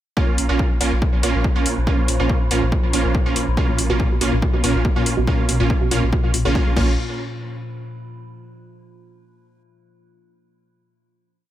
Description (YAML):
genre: driving peak-time techno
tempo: 141 BPM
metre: 4/4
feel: straight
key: Bb phrygian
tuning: A4 = 441 Hz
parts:
  - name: rave stab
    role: stabs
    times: 0.2-6.9 s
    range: Bb3 to F4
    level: -22 LUFS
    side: right 3 dB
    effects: chorus, built-in reverb, cassette tape, sidechain pumping, tape echo
  - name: metallic inharmonic drone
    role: drone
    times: 0.7-7.0 s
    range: Bb2 to F3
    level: -30 LUFS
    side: left 2 dB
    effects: chorus, built-in reverb, phaser, sidechain pumping
  - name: electronic kick drum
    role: drums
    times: 0.2-6.9 s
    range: none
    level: -20 LUFS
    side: equal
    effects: none
  - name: warm sub bass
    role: bass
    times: 0.3-7.0 s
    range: Bb1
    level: -22 LUFS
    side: equal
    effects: overdrive, sidechain pumping, low-pass filter
  - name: techno drum kit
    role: drums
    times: 0.4-6.9 s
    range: crash cymbal, hi-hat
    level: -26 LUFS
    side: left 2 dB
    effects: sidechain pumping on hats, sidechain pumping on cymbals
  - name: woody wave-folded pluck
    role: riff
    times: 3.6-7.0 s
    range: Bb2 to Db3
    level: -24 LUFS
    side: left 1 dB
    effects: chorus, sidechain pumping, dub echo
room: light reverb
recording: echo-heavy mix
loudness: -16 LUFS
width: side -12 dB against mid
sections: 0.2-7.0 groove; 7.0-8.7 final hit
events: none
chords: 0.2 Bbm; 7.0 N.C.